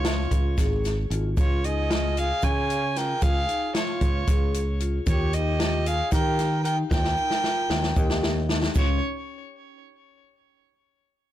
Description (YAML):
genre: progressive instrumental, band music in an uneven meter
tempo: 227 BPM (eighths)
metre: 7/8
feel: straight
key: Db lydian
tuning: A4 = 441 Hz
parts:
  - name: warm violin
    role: melody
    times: 0.0-9.0 s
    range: Db5 to Ab5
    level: -29 LUFS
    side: right 1 dB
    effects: ping-pong delay
  - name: mellow flugelhorn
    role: second line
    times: 0.0-9.0 s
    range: F4 to Db5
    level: -34 LUFS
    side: right 5 dB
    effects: none
  - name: vibraphone with soft mallets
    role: arpeggios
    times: 0.0-9.0 s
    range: Db4 to Ab4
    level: -33 LUFS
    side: left 5 dB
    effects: ping-pong delay
  - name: fingered electric bass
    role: bass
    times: 0.0-9.0 s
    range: Ab1 to Eb3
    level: -26 LUFS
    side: equal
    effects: none
  - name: open jazz drum kit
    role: drums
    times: 0.0-8.9 s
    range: crash cymbal, hi-hat, kick drum, snare drum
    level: -25 LUFS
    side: equal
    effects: none
  - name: tube shaker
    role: percussion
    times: 0.6-9.0 s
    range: none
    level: -48 LUFS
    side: right 5 dB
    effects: none
room: light reverb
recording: blown-out, overdriven recording, overdrive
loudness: -22 LUFS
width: side -12 dB against mid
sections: 0.0-1.4 A section; 1.4-8.8 B section; 8.8-10.6 C section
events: drum fill 6.9-8.8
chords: 0.0 Db; 5.1 Eb; 8.8 N.C.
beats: 0.05 0.31 0.57 0.84 1.10 | 1.37 1.63 1.90 2.16 2.43 2.69 2.96 | 3.22 3.48 3.75 4.01 4.28 4.54 4.81 | 5.07 5.33 5.60 5.86 6.12 6.39 6.65 | 6.92 7.18 7.44 7.71 7.97 8.23 8.49 | 8.76